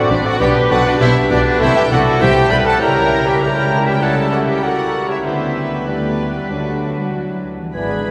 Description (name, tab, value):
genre	quick classical-period movement for symphony orchestra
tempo	99 BPM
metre	4/4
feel	straight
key	G major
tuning	A4 = 440 Hz
part	bright oboe	second line	0.0-8.1 s	B4 to G#5	-27 LUFS	equal	none
part	mellow clarinet	second line	0.0-8.1 s	B3 to E4	-30 LUFS	equal	none
part	mellow hollow silver concert flute	second line	0.0-8.1 s	F#4 to D5	-27 LUFS	equal	none
part	dark bassoon	accompaniment	0.0-8.1 s	E3 to C4	-27 LUFS	equal	none
part	warm studio viola section	accompaniment	0.0-8.1 s	G4 to D5	-27 LUFS	equal	none
part	warm trumpet section	stabs	0.0-8.1 s	D4 to B4	-23 LUFS	equal	none
part	warm studio violin section	melody	0.1-8.1 s	D5 to B5	-26 LUFS	equal	none
part	dark studio violin section	second line	0.1-8.1 s	G3 to G#4	-28 LUFS	equal	none
part	dark studio double bass section	bass	0.1-8.1 s	G#1 to D2	-24 LUFS	equal	none
part	warm studio cello section	bass	0.1-8.1 s	G#2 to A3	-25 LUFS	equal	none
part	warm French horn section	sustained chords	0.4-8.0 s	E3 to E4	-29 LUFS	equal	none
room	wet cathedral reverb, RT60 5.7 s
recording	recorded in a church or concert hall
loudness	-16 LUFS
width	mono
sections	0.0-8.1 A section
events	none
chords	0.4 G/B; 1.6 Am/C; 2.8 C#dim7; 5.2 G/D; 6.5 D